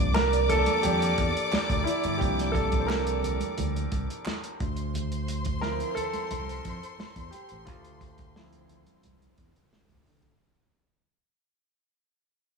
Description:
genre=lush 1970s-style soul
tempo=88 BPM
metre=4/4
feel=straight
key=unclear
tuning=A4 = 440 Hz
part: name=warm studio string section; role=second line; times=0.0-9.7 s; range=C5 to D6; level=-34 LUFS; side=left 1 dB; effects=none
part: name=warm grand piano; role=accompaniment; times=0.0-10.4 s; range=F3 to C5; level=-29 LUFS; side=equal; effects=none
part: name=fingered electric bass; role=bass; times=0.0-10.3 s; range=G1 to D3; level=-30 LUFS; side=right 1 dB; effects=none
part: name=warm soul drum kit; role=drums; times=0.2-10.4 s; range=hi-hat, kick drum, snare drum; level=-32 LUFS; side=right 1 dB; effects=none
part: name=congas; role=percussion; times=0.2-10.2 s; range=none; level=-38 LUFS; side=right 9 dB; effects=none
part: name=group handclap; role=percussion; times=0.2-4.4 s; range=none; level=-39 LUFS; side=right 6 dB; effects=none
room=light reverb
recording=none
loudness=-25 LUFS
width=side -5 dB against mid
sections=0.0-10.4 A section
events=fade-out 0.0-10.4; grand piano solo 0.0-10.4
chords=0.0 C9sus4; 4.6 Dm7

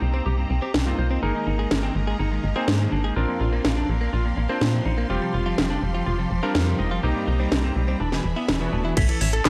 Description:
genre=italo disco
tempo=124 BPM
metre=4/4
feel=straight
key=unclear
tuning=A4 = 440 Hz
part: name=lightly driven lead guitar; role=melody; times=0.0-9.5 s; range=E3 to E5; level=-32 LUFS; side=equal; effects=tape echo
part: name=clear symphonic string section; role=sustained chords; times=0.0-9.5 s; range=C#4 to C6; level=-39 LUFS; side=equal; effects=low-pass filter
part: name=bright electric grand piano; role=stabs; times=0.0-8.9 s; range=G3 to C5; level=-32 LUFS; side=equal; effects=low-pass filter
part: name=tight sequencer bass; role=bass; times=0.0-9.5 s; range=E1 to Bb2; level=-26 LUFS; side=equal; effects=tube saturation
part: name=direct-recorded clean electric guitar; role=arpeggios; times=0.1-9.5 s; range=F2 to A4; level=-36 LUFS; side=equal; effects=tape echo
part: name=house drum kit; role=drums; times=0.7-9.5 s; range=crash cymbal, handclaps, hi-hat, snare drum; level=-28 LUFS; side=equal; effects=overdrive
part: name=electronic kick drum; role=drums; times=9.0-9.5 s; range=none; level=-24 LUFS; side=equal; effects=overdrive
room=little or no reverb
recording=dry, gritty hardware recording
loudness=-23 LUFS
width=mono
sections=0.0-9.0 A section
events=none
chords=0.0 Cm7; 1.2 Absus2; 3.2 Bbadd9; 5.1 Fsus2; 7.0 Cm7; 8.0 E7; 9.0 A

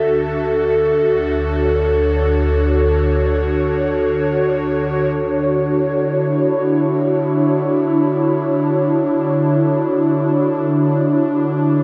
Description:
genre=ambient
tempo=free time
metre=none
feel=none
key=D major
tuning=A4 = 441 Hz
part: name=airy breathy pad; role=sustained chords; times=0.0-11.8 s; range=D3 to E5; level=-17 LUFS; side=equal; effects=chorus
part: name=deep rumbling drone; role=bass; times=0.2-5.1 s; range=D2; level=-25 LUFS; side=equal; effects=built-in reverb
room=wet cathedral reverb, RT60 5.3 s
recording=in a vast, echoing space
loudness=-17 LUFS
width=mono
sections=0.0-5.2 A section; 5.2-11.8 B section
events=none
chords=0.5 Dmaj7

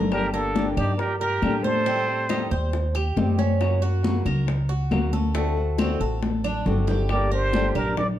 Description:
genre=latin, Cuban son and guajira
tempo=138 BPM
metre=4/4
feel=straight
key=G minor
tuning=A4 = 440 Hz
part: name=flamenco guitar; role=accompaniment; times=0.0-8.0 s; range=C#3 to A4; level=-30 LUFS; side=left 4 dB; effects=none
part: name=Cuban tres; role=arpeggios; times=0.0-8.2 s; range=A3 to D5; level=-31 LUFS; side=right 4 dB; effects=none
part: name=upright bass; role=bass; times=0.0-8.2 s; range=G1 to A2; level=-25 LUFS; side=equal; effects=none
part: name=trumpet with plunger mute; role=melody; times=0.1-2.5, 7.1-8.1 s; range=G4 to D5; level=-26 LUFS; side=right 1 dB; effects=none
part: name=bright reedy jazz flute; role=second line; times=0.1-2.5, 7.1-8.0 s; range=D4 to Bb4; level=-32 LUFS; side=right 4 dB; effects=none
part: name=bongos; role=percussion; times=0.1-8.2 s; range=none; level=-34 LUFS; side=left 5 dB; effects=none
part: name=claves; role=percussion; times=0.1-8.0 s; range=none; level=-38 LUFS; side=left 5 dB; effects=none
part: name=congas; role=percussion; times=0.1-8.2 s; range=none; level=-28 LUFS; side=left 2 dB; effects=none
room=light reverb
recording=dark, warm production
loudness=-21 LUFS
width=side -12 dB against mid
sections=0.1-8.2 A section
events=drum fill 6.2-7.1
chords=0.1 Gm; 1.9 Am7b5; 3.6 F#; 5.4 D7; 7.1 Gm

